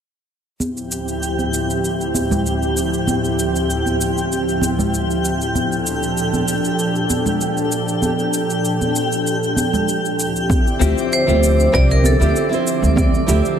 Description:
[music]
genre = sunset chillout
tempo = 97 BPM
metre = 4/4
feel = swing 53% on 16ths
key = D minor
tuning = A4 = 440 Hz
[part]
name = airy breathy pad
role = sustained chords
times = 0.7-13.6 s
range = D2 to E5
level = -20 LUFS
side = right 1 dB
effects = chorus
[part]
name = electronic shaker and rim click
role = drums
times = 0.6-13.6 s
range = none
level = -27 LUFS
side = equal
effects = overdrive
[part]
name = congas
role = percussion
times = 0.6-13.1 s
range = none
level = -24 LUFS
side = right 2 dB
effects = none
[part]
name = twinkling granular texture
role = texture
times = 0.9-13.6 s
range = D4 to G5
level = -25 LUFS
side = left 1 dB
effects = built-in reverb
[part]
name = electronic kick drum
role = drums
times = 10.5-13.1 s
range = none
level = -18 LUFS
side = equal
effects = overdrive
[part]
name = nylon-string guitar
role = accompaniment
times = 10.8-13.6 s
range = C4 to C5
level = -20 LUFS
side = moving between left 8 dB and right 6 dB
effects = auto-pan, ping-pong delay
[part]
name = upright bass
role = bass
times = 10.8-13.4 s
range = C2 to D2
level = -16 LUFS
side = equal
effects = none
[part]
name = vibraphone with hard mallets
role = melody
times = 11.1-12.6 s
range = A4 to D5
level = -20 LUFS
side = right 1 dB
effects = ping-pong delay
[sound]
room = moderate lush hall reverb, RT60 2.1 s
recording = lossy compression artefacts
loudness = -16 LUFS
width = side -8 dB against mid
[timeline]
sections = 0.6-10.5 A section; 10.5-13.6 B section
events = none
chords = 0.6 Dm11; 5.5 Bbmaj7; 10.2 Dm11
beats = | 0.60 1.22 1.84 2.46 | 3.08 3.69 4.31 4.93 | 5.55 6.17 6.79 7.40 | 8.02 8.64 9.26 9.88 | 10.50 11.12 11.73 12.35 | 12.97 13.59

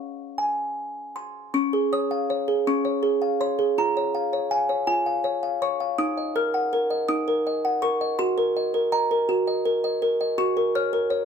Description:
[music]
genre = classical, lullaby for music box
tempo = 54 BPM (dotted quarters)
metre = 6/8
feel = straight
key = Db major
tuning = A4 = 440 Hz
[part]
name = music box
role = solo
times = 0.0-11.2 s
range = Db4 to F6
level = -22 LUFS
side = equal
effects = none
[sound]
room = light reverb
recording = close, detailed microphones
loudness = -22 LUFS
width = side -7 dB against mid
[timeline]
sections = 0.0-1.5 A section; 1.5-11.2 B section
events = none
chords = 0.0 Db; 3.8 Db/F; 6.0 Ebm; 8.2 Ebm/Gb; 10.4 Gb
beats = 0.39 | 1.54 2.66 | 3.78 4.88 | 5.99 7.08 | 8.19 9.28 | 10.38

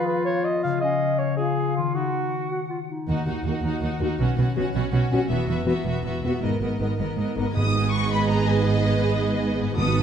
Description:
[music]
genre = cinematic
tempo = 108 BPM (dotted quarters)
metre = 6/8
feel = straight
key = Eb minor, Eb phrygian from 3.1 s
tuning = A4 = 440 Hz
[part]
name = dark cor anglais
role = second line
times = 0.0-2.5 s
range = F4 to F5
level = -26 LUFS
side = right 3 dB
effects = none
[part]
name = small flute group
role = second line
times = 0.0-2.9 s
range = F5 to Gb5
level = -33 LUFS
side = equal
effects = none
[part]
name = warm clarinet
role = second line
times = 0.0-3.1 s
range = Db4 to Gb4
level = -29 LUFS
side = left 3 dB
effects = none
[part]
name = concert harp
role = arpeggios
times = 0.0-10.0 s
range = E2 to Bb4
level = -30 LUFS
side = left 10 dB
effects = none
[part]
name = clear symphonic violin section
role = melody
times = 3.1-10.0 s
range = Eb5 to D#6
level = -31 LUFS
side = left 2 dB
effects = none
[part]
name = rich symphonic violin section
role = second line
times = 3.1-10.0 s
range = Gb4 to D#5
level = -32 LUFS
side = left 1 dB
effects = none
[part]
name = rich symphonic viola section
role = accompaniment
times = 3.1-10.0 s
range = B3 to G#4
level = -29 LUFS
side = right 3 dB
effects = none
[part]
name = rich symphonic cello section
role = bass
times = 3.1-10.0 s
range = Eb2 to B2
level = -27 LUFS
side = right 3 dB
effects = none
[part]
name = warm symphonic double bass section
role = bass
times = 3.1-10.0 s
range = E1 to Eb2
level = -27 LUFS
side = right 4 dB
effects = none
[part]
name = mellow French horn section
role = sustained chords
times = 3.5-7.4 s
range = Bb3 to Bb4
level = -29 LUFS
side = left 4 dB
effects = none
[part]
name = timpani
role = percussion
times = 7.6-10.0 s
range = G#2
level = -27 LUFS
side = right 2 dB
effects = none
[sound]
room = moderate scoring stage reverb, RT60 1.4 s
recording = dark, warm production, nothing above 11.0 kHz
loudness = -21 LUFS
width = side -8 dB against mid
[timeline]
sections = 0.0-3.1 A section; 3.1-7.6 B section; 7.6-10.0 C section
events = none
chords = 0.0 Fdim; 0.8 Dbadd9; 2.0 Ebm; 4.2 Bsus2; 5.3 Esus2; 6.4 Abmadd9; 7.6 G#m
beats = 0.27 | 0.83 1.39 | 1.95 2.52 | 3.09 3.65 | 4.21 4.76 | 5.31 5.87 | 6.43 7.00 | 7.57 8.13 | 8.69 9.24 | 9.79

